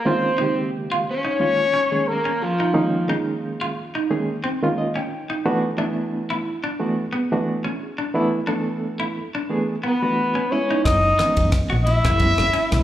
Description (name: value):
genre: electric jazz fusion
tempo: 89 BPM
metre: 4/4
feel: swing 55% on 16ths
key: unclear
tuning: A4 = 440 Hz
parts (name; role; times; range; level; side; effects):
- breathy trumpet; melody; 0.0-3.1, 9.9-12.8 s; F4 to Fb5; -21 LUFS; left 2 dB; slapback echo
- crunchy overdriven guitar; second line; 0.0-3.1, 9.9-12.8 s; F3 to Fb4; -28 LUFS; right 1 dB; slapback echo
- barky reed electric piano; accompaniment; 0.1-12.8 s; Db3 to G5; -24 LUFS; right 1 dB; overdrive, fast tremolo
- clean electric guitar; stabs; 0.4-12.8 s; Fb3 to Gb4; -27 LUFS; right 1 dB; wide subtle chorus, slapback echo
- woody fretless electric bass; bass; 10.9-12.8 s; Gb1 to Db2; -20 LUFS; equal; none
- tight funk drum kit; drums; 10.9-12.8 s; kick drum, ride cymbal, rim click; -23 LUFS; equal; none
room: light reverb, studio reverb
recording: live gig heard through the venue's PA, club ambience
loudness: -19 LUFS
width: side -12 dB against mid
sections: 0.1-12.8 A section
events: reed electric piano fill 4.4-5.5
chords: 0.1 Eb9sus4; 5.5 E9sus4; 10.5 Gb9sus4